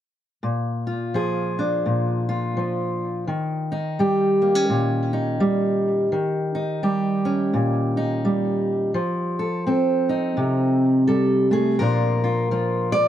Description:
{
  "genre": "acoustic country blues, solo or duo",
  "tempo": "84 BPM",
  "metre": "4/4",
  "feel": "swing 60% on 8ths",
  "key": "unclear",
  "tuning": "A4 = 442 Hz",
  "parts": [
    { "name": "fingerpicked steel-string acoustic guitar", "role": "solo", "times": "0.4-13.1 s", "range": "Bb2 to D5", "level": "-19 LUFS", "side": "equal", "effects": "tape echo" }
  ],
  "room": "wet small room reverb, RT60 0.5 s",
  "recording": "cassette tape",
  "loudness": "-20 LUFS",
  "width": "side -11 dB against mid",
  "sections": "0.4-11.8 A section; 11.8-13.1 B section",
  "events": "none",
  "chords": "0.4 Bb7; 3.3 Eb7; 9.0 F7; 11.8 Bb",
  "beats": "| 0.43 1.14 1.85 2.56 | 3.27 3.98 4.69 5.40 | 6.11 6.82 7.54 8.24 | 8.96 9.67 10.38 11.09 | 11.79 12.50"
}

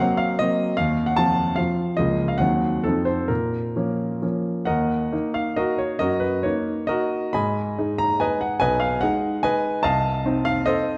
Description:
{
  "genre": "classical, romantic triple-time dance for piano with dotted rhythms",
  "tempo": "125-161 BPM",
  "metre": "3/4",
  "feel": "rubato",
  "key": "Bb minor, Eb minor from 4.7 s",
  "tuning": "A4 = 440 Hz",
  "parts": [
    { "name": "warm baby grand piano", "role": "solo", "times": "0.0-11.0 s", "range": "Cb2 to Cb6", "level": "-23 LUFS", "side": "equal", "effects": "none" }
  ],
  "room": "moderate scoring stage reverb, RT60 1.7 s",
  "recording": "dark, warm production",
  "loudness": "-23 LUFS",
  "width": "mono",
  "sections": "0.0-4.7 A section; 4.7-11.0 B section",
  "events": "none",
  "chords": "0.0 Cm7b5; 0.8 F7/Eb; 2.0 Bbm/Db; 2.4 Cdim/Eb; 2.8 F7; 3.3 Bbm; 4.7 Ebm; 6.0 Ebm/Gb; 7.3 Abm; 8.6 Abm/Cb; 9.8 F7/C",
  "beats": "0.39 | 0.78 1.17 1.58 | 1.97 2.38 2.84 | 3.30 3.75 4.23 | 4.68 5.13 5.58 | 6.00 6.45 6.89 | 7.35 7.78 8.22 | 8.62 9.02 9.44 | 9.84 10.25 10.66"
}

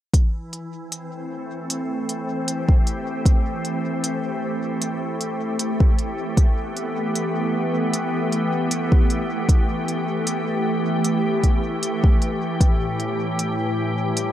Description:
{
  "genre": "ambient dub",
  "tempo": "77 BPM",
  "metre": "4/4",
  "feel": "swing 54% on 16ths",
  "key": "A minor",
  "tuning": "A4 = 441 Hz",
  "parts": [
    { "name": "soft additive organ-like pad", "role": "sustained chords", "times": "0.3-14.3 s", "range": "A2 to G4", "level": "-23 LUFS", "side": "equal", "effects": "ensemble chorus, built-in reverb" },
    { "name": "electronic hi-hat", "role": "drums", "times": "0.1-14.3 s", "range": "none", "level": "-27 LUFS", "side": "equal", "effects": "overdrive" },
    { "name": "electronic kick drum", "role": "drums", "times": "0.1-12.8 s", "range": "none", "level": "-16 LUFS", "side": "equal", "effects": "none" }
  ],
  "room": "light reverb",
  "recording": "none",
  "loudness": "-20 LUFS",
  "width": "side -12 dB against mid",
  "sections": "0.1-14.3 A section",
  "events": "none",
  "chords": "0.1 Am7; 12.6 C/A (rootless)",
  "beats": "| 0.14 0.92 1.70 2.48 | 3.26 4.04 4.82 5.59 | 6.37 7.15 7.93 8.71 | 9.49 10.27 11.05 11.83 | 12.61 13.39 14.17"
}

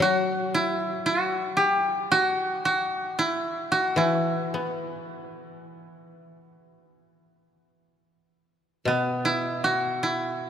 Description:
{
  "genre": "japanese traditional, Japanese chamber music",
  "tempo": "50-58 BPM",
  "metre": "4/4",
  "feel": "rubato",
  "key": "E hirajoshi",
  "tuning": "A4 = 445 Hz",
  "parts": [
    { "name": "koto", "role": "melody", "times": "0.0-10.5 s", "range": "B3 to G4", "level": "-24 LUFS", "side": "right 1 dB", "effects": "none" },
    { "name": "koto", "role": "accompaniment", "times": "0.0-10.5 s", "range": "B2 to B3", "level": "-29 LUFS", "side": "left 3 dB", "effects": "none" }
  ],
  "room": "wet cathedral reverb, RT60 4.3 s",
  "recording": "minimal, uncompressed stereo recording",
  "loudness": "-23 LUFS",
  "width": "side -8 dB against mid",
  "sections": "0.0-8.9 A section; 8.9-10.5 B section",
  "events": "none",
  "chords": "none",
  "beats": "| 0.02 1.07 2.12 3.17 | 4.26 5.38 6.51 7.70 | 8.87 10.01"
}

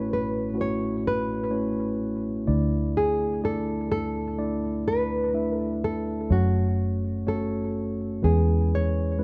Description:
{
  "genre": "folk",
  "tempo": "62 BPM",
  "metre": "4/4",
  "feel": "straight",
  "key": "A major",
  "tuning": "A4 = 439 Hz",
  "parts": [
    { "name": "nylon-string guitar", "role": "melody", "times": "0.0-9.2 s", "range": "F#4 to C#5", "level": "-31 LUFS", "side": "equal", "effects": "tape echo" },
    { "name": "mellow tine electric piano", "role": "accompaniment", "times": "0.0-9.2 s", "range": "F#1 to E5", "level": "-30 LUFS", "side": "equal", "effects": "none" },
    { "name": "vintage muted fingered electric bass", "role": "bass", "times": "0.0-9.2 s", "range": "A1 to F#2", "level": "-27 LUFS", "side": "equal", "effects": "none" }
  ],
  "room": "light reverb",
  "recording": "dark, warm production",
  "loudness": "-26 LUFS",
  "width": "mono",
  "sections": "0.0-9.2 A section",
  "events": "none",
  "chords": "0.0 A; 2.5 Dsus2; 6.3 F#m; 8.2 E6",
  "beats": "0.56 1.52 | 2.48 3.43 4.39 5.35 | 6.31 7.28 8.24 9.21"
}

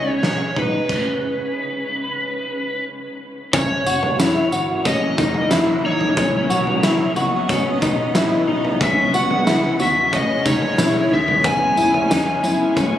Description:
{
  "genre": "dream pop",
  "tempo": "91 BPM",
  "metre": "4/4",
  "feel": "straight",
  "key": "unclear",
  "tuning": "A4 = 439 Hz",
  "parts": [
    { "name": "overdriven slide guitar", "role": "melody", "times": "0.0-13.0 s", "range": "B4 to G#5", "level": "-22 LUFS", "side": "left 1 dB", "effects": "tape echo" },
    { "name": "granular cloud pad", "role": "sustained chords", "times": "0.0-13.0 s", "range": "B2 to D#5", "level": "-26 LUFS", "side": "right 1 dB", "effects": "built-in reverb" },
    { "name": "clean electric guitar", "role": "arpeggios", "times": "0.0-13.0 s", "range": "D#3 to F#4", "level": "-21 LUFS", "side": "left 1 dB", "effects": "ensemble chorus, tape echo" },
    { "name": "plucky analog bass", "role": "bass", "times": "0.0-12.9 s", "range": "E1 to F#2", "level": "-28 LUFS", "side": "equal", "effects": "none" },
    { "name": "oversized low-tuned drum kit", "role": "drums", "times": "0.2-12.9 s", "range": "crash cymbal, kick drum, snare drum, tambourine, toms", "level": "-22 LUFS", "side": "equal", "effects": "none" }
  ],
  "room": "light reverb",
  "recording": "recorded on a phone in the room, club reverb",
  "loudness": "-16 LUFS",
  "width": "side -11 dB against mid",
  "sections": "0.0-3.5 A section; 3.5-13.0 B section",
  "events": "stop 0.9-3.5",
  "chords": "0.0 C#5; 0.9 N.C.; 3.5 F#7; 6.2 Badd9; 8.8 C#m",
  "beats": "0.23 | 0.89 1.55 2.21 2.87 | 3.53 4.19 4.85 5.51 | 6.17 6.83 7.49 8.15 | 8.81 9.47 10.12 10.79 | 11.44 12.10 12.76"
}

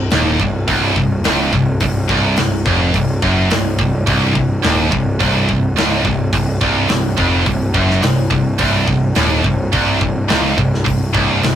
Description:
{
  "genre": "heavy metal",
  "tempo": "106 BPM",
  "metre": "4/4",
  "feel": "straight",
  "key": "C minor",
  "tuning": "A4 = 439 Hz",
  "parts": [
    { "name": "heavy high-gain guitar", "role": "riff", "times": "0.0-11.6 s", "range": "C2 to F#2", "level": "-18 LUFS", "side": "right 5 dB", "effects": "distortion" },
    { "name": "scooped high-gain guitar", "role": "riff", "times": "0.0-11.6 s", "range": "C2 to F#2", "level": "-20 LUFS", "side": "left 4 dB", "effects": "distortion" },
    { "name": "fuzz picked electric bass", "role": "bass", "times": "0.0-11.6 s", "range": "C1 to F#1", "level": "-18 LUFS", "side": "equal", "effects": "overdrive" },
    { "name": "tight metal drum kit", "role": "drums", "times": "0.1-11.6 s", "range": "hi-hat, kick drum, snare drum", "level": "-20 LUFS", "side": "left 1 dB", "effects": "none" }
  ],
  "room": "moderate booth ambience, RT60 0.2 s",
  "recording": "rough rehearsal-room recording, warm saturation",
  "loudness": "-13 LUFS",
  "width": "side -10 dB against mid",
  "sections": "0.0-11.6 A section",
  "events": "none",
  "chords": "0.0 Cm",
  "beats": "0.12 0.69 1.25 | 1.82 2.38 2.95 3.51 | 4.08 4.64 5.21 5.77 | 6.34 6.91 7.47 8.04 | 8.60 9.17 9.73 10.30 | 10.86 11.43"
}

